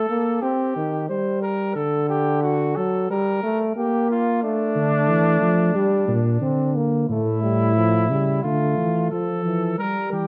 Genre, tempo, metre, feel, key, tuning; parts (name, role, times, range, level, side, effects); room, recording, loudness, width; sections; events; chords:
classical, imitative canzona for brass ensemble; 90 BPM; 4/4; straight; A4 = 441 Hz
mellow flugelhorn; second line; 0.0-10.3 s; D4 to C5; -27 LUFS; equal
mellow trombone; accompaniment; 0.0-10.3 s; D3 to C4; -25 LUFS; equal
mellow tuba; bass; 4.8-10.3 s; A2 to G3; -24 LUFS; equal
light reverb; close, detailed microphones; -21 LUFS; mono
0.0-9.8 A section
0.4 Cm; 1.8 D; 3.1 Gm; 4.4 Dm; 5.8 Gm; 7.1 A; 8.4 Dm